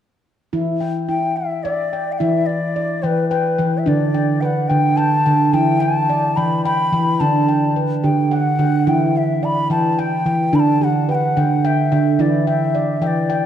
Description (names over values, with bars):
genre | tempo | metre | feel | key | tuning
world meditative, meditative tuned percussion | 72 BPM (dotted quarters) | 6/8 | straight | E minor | A4 = 440 Hz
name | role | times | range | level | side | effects
handpan | arpeggios | 0.5-13.5 s | D3 to G5 | -17 LUFS | right 1 dB | ping-pong delay
bansuri | melody | 1.1-13.5 s | B4 to B5 | -20 LUFS | left 2 dB | ping-pong delay
room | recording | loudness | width
wet recital hall reverb, RT60 1.5 s, small room ambience | dark, warm production | -15 LUFS | side -10 dB against mid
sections
0.5-2.2 A section; 2.2-13.5 B section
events
none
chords
0.5 Em; 3.9 D5; 5.5 Em; 7.2 D; 8.9 Em; 10.5 D; 12.2 Em